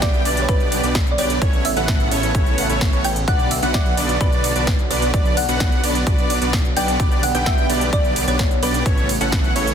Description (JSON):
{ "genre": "EDM, festival progressive house", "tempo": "129 BPM", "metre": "4/4", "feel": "straight", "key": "B minor", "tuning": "A4 = 440 Hz", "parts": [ { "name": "thumb-piano-like synth pluck", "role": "melody", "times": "0.0-9.7 s", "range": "B4 to G5", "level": "-25 LUFS", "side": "equal", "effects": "analog chorus, dub echo" }, { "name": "lush unison pad", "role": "sustained chords", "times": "0.0-9.7 s", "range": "C#3 to B3", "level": "-29 LUFS", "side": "right 1 dB", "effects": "chorus, sidechain pumping" }, { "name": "wide unison lead", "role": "arpeggios", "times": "0.0-9.7 s", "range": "C#5 to G5", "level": "-26 LUFS", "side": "equal", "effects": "lush chorus, sidechain pumping, dub echo" }, { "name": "dense compressed supersaw", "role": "riff", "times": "0.0-9.7 s", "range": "B3 to G5", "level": "-24 LUFS", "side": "right 1 dB", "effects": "sidechain pumping, dub echo" }, { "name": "detuned saw bass", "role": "bass", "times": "0.0-9.7 s", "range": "A1 to B1", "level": "-25 LUFS", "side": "equal", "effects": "sidechain pumping" }, { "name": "big-room dance drum kit", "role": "drums", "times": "0.0-9.7 s", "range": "hi-hat, ride cymbal, snare drum", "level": "-26 LUFS", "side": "equal", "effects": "none" }, { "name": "electronic kick drum", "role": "drums", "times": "0.0-9.4 s", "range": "none", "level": "-19 LUFS", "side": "equal", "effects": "none" } ], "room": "little or no reverb", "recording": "dense, heavily limited modern master", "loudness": "-16 LUFS", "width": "side -8 dB against mid", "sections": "0.0-9.7 A section", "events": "none", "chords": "0.0 G/B; 1.4 Aadd9; 3.3 Bm; 7.0 G/B; 8.9 Aadd9", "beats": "0.02 0.49 0.95 | 1.42 1.88 2.35 2.81 | 3.28 3.74 4.21 4.67 | 5.14 5.60 6.07 6.53 | 7.00 7.46 7.93 8.39 | 8.86 9.32" }